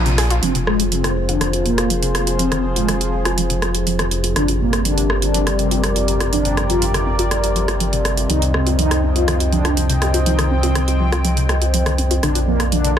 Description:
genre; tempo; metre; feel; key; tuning
melodic techno; 122 BPM; 4/4; straight; F dorian; A4 = 441 Hz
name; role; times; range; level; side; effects
sweeping resonant pad; sustained chords; 0.0-13.0 s; F3 to G5; -24 LUFS; left 1 dB; chorus, phaser
dark detuned saw bass; bass; 0.0-13.0 s; F1 to C2; -20 LUFS; equal; none
warbly dusty pluck; arpeggios; 0.1-13.0 s; C3 to Ab4; -26 LUFS; equal; chorus, dub echo
techno drum kit; drums; 0.1-13.0 s; hi-hat, rim click; -22 LUFS; right 1 dB; soft clipping on snare
mellow synth brass; melody; 0.4-12.9 s; Ab3 to F4; -23 LUFS; equal; chorus, tape echo
analog drone; drone; 1.6-13.0 s; F2 to C3; -28 LUFS; equal; chorus
room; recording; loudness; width
light reverb; dense, heavily limited modern master; -15 LUFS; side -9 dB against mid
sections
0.4-13.0 A section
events
filter sweep on analog polysynth 0.4-13.0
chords
0.4 Fm; 4.4 Gm; 8.3 Cm; 12.2 Bb

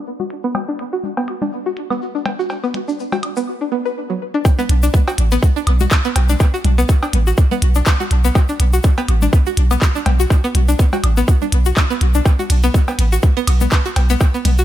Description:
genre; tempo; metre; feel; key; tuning
minimal techno; 123 BPM; 4/4; swing 56% on 16ths; B minor; A4 = 440 Hz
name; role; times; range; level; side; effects
egg shaker; percussion; 0.1-14.6 s; none; -32 LUFS; left 6 dB; none
string-like resonator pluck; riff; 0.2-14.6 s; F#3 to B4; -21 LUFS; equal; chorus, sidechain pumping, tape echo
congas, cowbell and woodblock; percussion; 0.2-14.6 s; none; -26 LUFS; left 4 dB; analog delay
minimal click drum kit; drums; 0.3-14.6 s; handclaps, hi-hat, ride cymbal; -23 LUFS; equal; low-pass filter on snare, low-pass filter on hats, low-pass filter on cymbals, dub echo
electronic kick drum; drums; 4.5-14.3 s; none; -13 LUFS; equal; none
punchy sub bass; bass; 4.7-14.6 s; A1 to B1; -14 LUFS; equal; sidechain pumping
room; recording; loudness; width
digital ambience; echo-heavy mix, low-pass filter; -14 LUFS; side -13 dB against mid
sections
0.0-4.5 A section; 4.5-14.6 B section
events
filter sweep on drum 0.0-4.5; filter sweep 0.0-4.5; drop 4.5-14.6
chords
0.0 Bm; 4.5 N.C.

